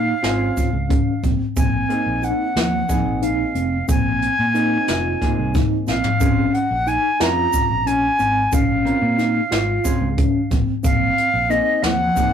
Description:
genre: progressive instrumental, band music in an uneven meter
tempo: 181 BPM (eighths)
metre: 7/8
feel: straight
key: Bb minor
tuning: A4 = 440 Hz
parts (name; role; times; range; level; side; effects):
- silver concert flute; melody; 0.0-12.3 s; Eb5 to Bb5; -21 LUFS; equal; none
- mellow tine electric piano; arpeggios; 0.0-12.3 s; F3 to F4; -24 LUFS; equal; medium stereo tremolo
- fingered electric bass; bass; 0.0-12.1 s; F1 to Bb2; -25 LUFS; right 1 dB; none
- vintage hollow-body jazz guitar; accompaniment; 0.2-12.3 s; Bb3 to Bb4; -26 LUFS; right 3 dB; none
- jazz brush drum kit; drums; 0.2-12.3 s; hi-hat, kick drum, snare drum, toms; -21 LUFS; left 1 dB; none
- tube shaker; percussion; 0.6-12.3 s; none; -36 LUFS; right 5 dB; none
room: wet small room ambience, RT60 0.5 s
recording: rough rehearsal-room recording, warm saturation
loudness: -16 LUFS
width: side -8 dB against mid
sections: 0.0-12.3 A section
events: drum fill 5.9-6.2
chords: 0.0 Bbm7; 1.6 Abadd9; 6.2 Bbm7; 10.8 Abadd9

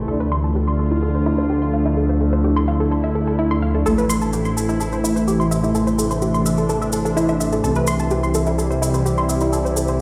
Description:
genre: melodic techno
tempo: 127 BPM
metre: 4/4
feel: straight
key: A minor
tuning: A4 = 438 Hz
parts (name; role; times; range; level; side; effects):
- evolving wavetable pad; sustained chords; 0.0-10.0 s; C3 to F4; -26 LUFS; equal; chorus, built-in reverb
- tight sequenced synth; arpeggios; 0.0-10.0 s; E4 to C6; -26 LUFS; equal; chorus, phaser, digital delay
- analog synth brass; stabs; 0.0-10.0 s; A3 to D5; -28 LUFS; equal; chorus, digital delay
- swelling detuned saw bass; bass; 0.0-10.0 s; A1 to D2; -24 LUFS; equal; tube saturation
- warbly tape-like pad; texture; 0.0-10.0 s; C4 to C6; -29 LUFS; equal; chorus, built-in reverb
- cabasa; percussion; 3.9-10.0 s; none; -33 LUFS; equal; none
room: light reverb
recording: played on a big sound system in a bare room, stone room reverb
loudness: -19 LUFS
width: mono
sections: 0.0-10.0 A section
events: filter sweep on synth arpeggio sound 0.0-10.0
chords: 0.1 Dm; 3.9 Am; 7.6 C

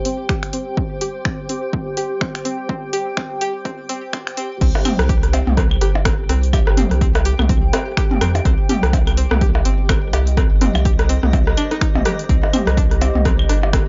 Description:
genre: minimal techno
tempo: 125 BPM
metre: 4/4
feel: swing 57% on 16ths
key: C minor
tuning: A4 = 440 Hz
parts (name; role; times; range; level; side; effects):
- granular cloud pad; texture; 0.0-13.9 s; G4 to G5; -30 LUFS; equal; built-in reverb, sidechain pumping
- string-like resonator pluck; riff; 0.1-13.8 s; C4 to G4; -30 LUFS; equal; chorus, sidechain pumping, tape echo
- punchy analog drum machine; drums; 0.1-13.8 s; crash cymbal, finger snaps, hi-hat; -29 LUFS; equal; overdrive, high-pass filter on hats, high-pass filter on snare, high-pass filter on cymbals
- electronic kick drum; drums; 0.3-13.8 s; none; -21 LUFS; equal; overdrive
- round analog bass; bass; 4.6-13.9 s; G1 to F2; -20 LUFS; equal; sidechain pumping
- minimal click drum kit; percussion; 4.8-13.8 s; claves, percussion blips, rim click, toms; -24 LUFS; equal; overdrive, tape echo
room: light reverb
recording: dry, gritty hardware recording, high-pass filter, nothing above 7.5 kHz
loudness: -18 LUFS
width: mono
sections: 0.0-4.6 A section; 4.6-13.9 B section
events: build-up 0.0-4.6; filter sweep on synth pluck 0.0-4.6; drop 4.6-13.9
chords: 0.0 C5

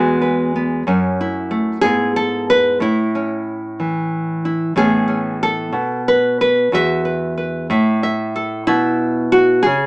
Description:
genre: folk, solo fingerstyle acoustic guitar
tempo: 61 BPM (dotted quarters)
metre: 6/8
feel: straight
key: unclear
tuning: A4 = 440 Hz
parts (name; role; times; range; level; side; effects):
- nylon-string guitar; solo; 0.0-9.9 s; E2 to E5; -15 LUFS; equal; none
room: moderate studio reverb, RT60 0.6 s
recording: small speaker sound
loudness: -15 LUFS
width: side -26 dB against mid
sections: 0.0-9.9 A section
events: none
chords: 0.0 Eadd9; 0.9 F#m7; 1.8 E/G#; 2.8 A; 4.8 Aadd9; 5.7 N.C.; 6.7 Esus2; 7.7 A5; 8.7 N.C.

